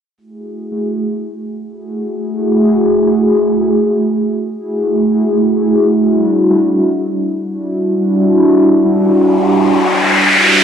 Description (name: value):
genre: drum and bass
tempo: free time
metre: none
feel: none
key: unclear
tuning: A4 = 435 Hz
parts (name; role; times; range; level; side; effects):
- warbly tape-like pad; sustained chords; 0.5-10.6 s; G3 to G#4; -12 LUFS; equal; chorus, built-in reverb
- riser; sound effects; 9.2-10.6 s; none; -11 LUFS; left 1 dB; none
room: moderate plate reverb, RT60 2.8 s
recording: cassette tape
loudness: -11 LUFS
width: side -8 dB against mid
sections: 0.2-10.6 A section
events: riser 9.2-10.6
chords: 0.2 F#m9; 6.0 Em9